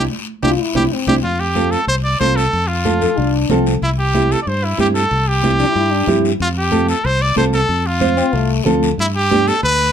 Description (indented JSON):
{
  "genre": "latin, cumbia",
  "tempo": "186 BPM",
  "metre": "4/4",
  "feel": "straight",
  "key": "unclear",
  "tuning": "A4 = 442 Hz",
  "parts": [
    { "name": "bright trumpet", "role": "melody", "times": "0.0-9.9 s", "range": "E4 to D5", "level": "-18 LUFS", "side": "right 1 dB", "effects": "none" },
    { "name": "nylon-string guitar", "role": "accompaniment", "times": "0.0-9.5 s", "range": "B3 to C5", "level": "-19 LUFS", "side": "right 4 dB", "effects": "none" },
    { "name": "fingered electric bass", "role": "bass", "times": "0.0-9.9 s", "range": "C2 to G2", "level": "-19 LUFS", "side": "left 1 dB", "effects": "none" },
    { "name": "mellow French horn", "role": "second line", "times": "0.4-8.9 s", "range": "F3 to A4", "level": "-20 LUFS", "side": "left 7 dB", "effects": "none" },
    { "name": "congas", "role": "percussion", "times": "0.4-9.8 s", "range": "none", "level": "-24 LUFS", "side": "left 2 dB", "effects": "none" },
    { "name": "guiro", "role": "percussion", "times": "0.4-9.9 s", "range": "none", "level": "-29 LUFS", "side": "left 7 dB", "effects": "none" }
  ],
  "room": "light reverb",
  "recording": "none",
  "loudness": "-14 LUFS",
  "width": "side -8 dB against mid",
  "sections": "0.0-1.2 A section; 1.2-9.9 B section",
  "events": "band accent 0.0-1.2",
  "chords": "0.0 Cadd9; 1.2 F; 3.8 C; 6.4 F; 9.0 G"
}